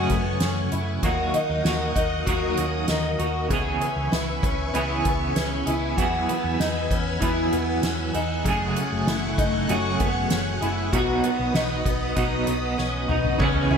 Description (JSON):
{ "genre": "dream pop", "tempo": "97 BPM", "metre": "4/4", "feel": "straight", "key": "unclear", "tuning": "A4 = 439 Hz", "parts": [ { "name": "semi-hollow electric guitar", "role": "accompaniment", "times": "0.0-13.8 s", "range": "F#2 to G#4", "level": "-27 LUFS", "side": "right 4 dB", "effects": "tremolo, lush chorus" }, { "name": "string machine, violins", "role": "sustained chords", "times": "0.0-13.8 s", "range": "A3 to E6", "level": "-30 LUFS", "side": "left 2 dB", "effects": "ensemble chorus" }, { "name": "fingerpicked twelve-string acoustic guitar", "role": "arpeggios", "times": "0.0-13.8 s", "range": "B3 to G#4", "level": "-27 LUFS", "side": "left 2 dB", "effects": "lush chorus, digital delay" }, { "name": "hollow-body short-scale fingered electric bass", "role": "bass", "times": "0.0-13.8 s", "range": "F#1 to F#2", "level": "-30 LUFS", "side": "equal", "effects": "none" }, { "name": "soft-mallet drum kit", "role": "drums", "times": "0.1-13.8 s", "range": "crash cymbal, hi-hat, kick drum, ride cymbal, snare drum, toms", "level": "-28 LUFS", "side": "equal", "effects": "gated reverb" } ], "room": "moderate lush hall reverb, RT60 1.8 s", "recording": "bright 1980s-style digital production", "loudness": "-21 LUFS", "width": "side -6 dB against mid", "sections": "0.0-13.4 A section", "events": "drum fill 12.8-13.4", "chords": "0.0 F#madd9; 1.0 D#m; 3.5 C#m7; 6.0 Eadd9; 8.5 F#madd9; 10.9 B" }